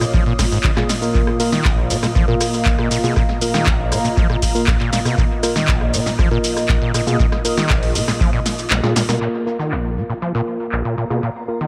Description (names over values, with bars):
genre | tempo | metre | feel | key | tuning
acid house | 119 BPM | 4/4 | straight | unclear | A4 = 440 Hz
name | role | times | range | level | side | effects
dark analog pad | sustained chords | 0.0-11.7 s | Bb2 to F5 | -28 LUFS | equal | chorus, sidechain pumping
overdriven acid bass | riff | 0.0-11.7 s | Bb1 to F3 | -24 LUFS | equal | distortion, analog delay
punchy analog drum machine | drums | 0.0-10.8 s | crash cymbal, handclaps, hi-hat, rim click, shaker, snare drum | -25 LUFS | equal | low-pass filter on hats, low-pass filter on perc, low-pass filter on snare, low-pass filter on cymbals, dub echo
granular cloud pad | texture | 0.0-11.7 s | Bb3 to Eb6 | -30 LUFS | equal | built-in reverb, sidechain pumping
electronic kick drum | drums | 0.1-8.3 s | none | -21 LUFS | equal | none
mellow tine electric piano | stabs | 0.8-11.6 s | Bb3 to Bb4 | -26 LUFS | equal | low-pass filter, dub echo
room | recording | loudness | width
light reverb | echo-heavy mix | -18 LUFS | mono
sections
0.0-9.2 A section; 9.2-11.7 B section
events
drop 0.0-9.2; drum fill 8.5-9.2; kick drops out 8.7-9.2; filter sweep on tine electric piano 9.2-11.7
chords
0.0 Bb5